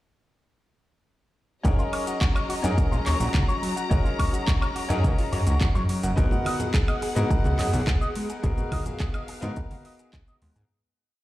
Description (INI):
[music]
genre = nu-disco, nu disco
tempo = 106 BPM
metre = 4/4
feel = straight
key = F# major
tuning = A4 = 442 Hz
[part]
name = bright grand piano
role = accompaniment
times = 1.6-10.7 s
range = B3 to A#4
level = -31 LUFS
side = left 2 dB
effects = sidechain pumping, analog delay
[part]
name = warm symphonic string section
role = sustained chords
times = 1.6-10.7 s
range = F#3 to A#5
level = -35 LUFS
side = left 1 dB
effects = sidechain pumping
[part]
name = electric guitar with an envelope filter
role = riff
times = 1.6-10.6 s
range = F#3 to G#5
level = -33 LUFS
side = left 1 dB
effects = analog chorus, analog delay
[part]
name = fat analog bass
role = bass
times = 1.6-10.7 s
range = F#1 to G#2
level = -25 LUFS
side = equal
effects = none
[part]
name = electronic kick drum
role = drums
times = 1.6-10.2 s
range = none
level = -24 LUFS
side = equal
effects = none
[part]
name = house drum kit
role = drums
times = 1.6-10.7 s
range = handclaps, hi-hat, shaker, woodblock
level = -34 LUFS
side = right 1 dB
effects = none
[part]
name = congas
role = percussion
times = 6.3-9.8 s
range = none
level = -34 LUFS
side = right 2 dB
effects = none
[sound]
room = studio ambience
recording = played on a big sound system in a bare room, large studio reverb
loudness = -22 LUFS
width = side -16 dB against mid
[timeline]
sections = 1.6-10.7 drop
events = drop 1.6-10.7; fade-out 7.7-10.7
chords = 1.6 F#6; 6.2 G#m7